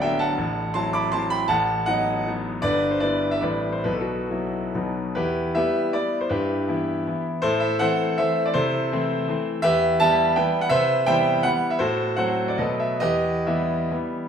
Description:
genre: classical, romantic triple-time dance for piano with dotted rhythms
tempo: 129-177 BPM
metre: 3/4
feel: rubato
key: E minor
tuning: A4 = 440 Hz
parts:
  - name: bright concert grand piano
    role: solo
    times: 0.0-14.3 s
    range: D1 to D6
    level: -20 LUFS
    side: equal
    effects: none
room: wet recital hall reverb, RT60 1.4 s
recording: minimal, uncompressed stereo recording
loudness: -20 LUFS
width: side -7 dB against mid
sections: 0.0-5.2 A section; 5.2-14.3 B section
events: none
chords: 0.4 F#m7b5/A; 1.5 B7/A; 2.6 Em/G; 3.4 Am7; 3.8 Bsus4; 4.7 B; 5.2 Em; 6.3 Em/G; 7.4 Am; 8.6 Am/C; 9.6 Em; 10.7 Cmaj7; 11.8 F#dim/A; 12.6 B7; 13.0 Em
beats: 0.03 | 0.39 0.76 1.13 | 1.50 1.88 2.27 | 2.63 3.02 3.43 | 3.84 4.30 4.75 | 5.16 5.56 5.94 | 6.31 6.68 7.07 | 7.43 7.81 8.19 | 8.55 8.92 9.29 | 9.63 10.00 10.36 | 10.71 11.07 11.44 | 11.80 12.18 12.59 | 13.02 13.47 13.92

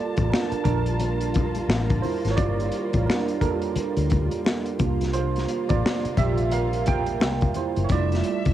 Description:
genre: R&B, neo-soul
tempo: 87 BPM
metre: 4/4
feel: swing 62% on 16ths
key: G dorian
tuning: A4 = 444 Hz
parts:
  - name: tine electric piano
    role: accompaniment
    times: 0.0-8.5 s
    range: G3 to G5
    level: -27 LUFS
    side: right 8 dB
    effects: analog chorus, cassette tape
  - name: warm studio string section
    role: sustained chords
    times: 0.0-8.5 s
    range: C3 to A5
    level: -31 LUFS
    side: left 2 dB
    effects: cassette tape
  - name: vintage muted fingered electric bass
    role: bass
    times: 0.2-8.5 s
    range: E1 to D2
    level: -25 LUFS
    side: left 2 dB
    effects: none
  - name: crunchy breakbeat drum kit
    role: drums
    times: 0.2-8.5 s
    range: finger snaps, hi-hat, kick drum, snare drum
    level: -25 LUFS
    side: left 2 dB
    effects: cassette tape
  - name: congas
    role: percussion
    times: 0.3-7.8 s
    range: none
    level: -37 LUFS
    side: left 12 dB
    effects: none
room: light reverb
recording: home recording on cassette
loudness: -21 LUFS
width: side -12 dB against mid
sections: 0.0-8.5 A section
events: tine electric piano solo 0.0-8.5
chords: 0.0 Gm9; 4.8 C7sus4; 7.9 Fmaj13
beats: 0.31 1.00 1.69 | 2.38 3.07 3.76 4.45 | 5.14 5.83 6.52 7.21 | 7.89

